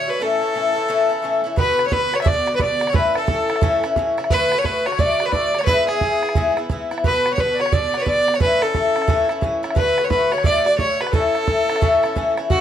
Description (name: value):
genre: celtic folk, Celtic hornpipe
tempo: 176 BPM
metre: 4/4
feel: swing 63% on 8ths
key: A major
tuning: A4 = 442 Hz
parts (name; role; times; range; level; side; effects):
- clear fiddle; melody; 0.0-12.6 s; F#4 to E5; -21 LUFS; right 2 dB; plate reverb
- accordion; second line; 0.0-12.6 s; F#4 to D5; -24 LUFS; left 4 dB; none
- Irish bouzouki; accompaniment; 0.0-12.6 s; G#2 to F#4; -22 LUFS; left 3 dB; none
- bodhran; percussion; 1.6-12.6 s; none; -22 LUFS; right 3 dB; none
room: wet studio reverb, RT60 0.5 s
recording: dark, warm production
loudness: -16 LUFS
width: side -10 dB against mid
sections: 0.0-1.6 A section; 1.6-12.5 A section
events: none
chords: 0.2 A; 1.6 Bm; 2.9 A; 4.3 D; 5.7 E; 7.0 Bm; 8.4 A; 9.8 D; 11.1 A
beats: | 0.21 0.55 0.89 1.24 | 1.58 1.92 2.26 2.60 | 2.94 3.28 3.62 3.97 | 4.31 4.65 4.99 5.33 | 5.67 6.01 6.36 6.70 | 7.04 7.38 7.72 8.06 | 8.40 8.75 9.09 9.43 | 9.77 10.11 10.45 10.80 | 11.14 11.48 11.82 12.16 | 12.50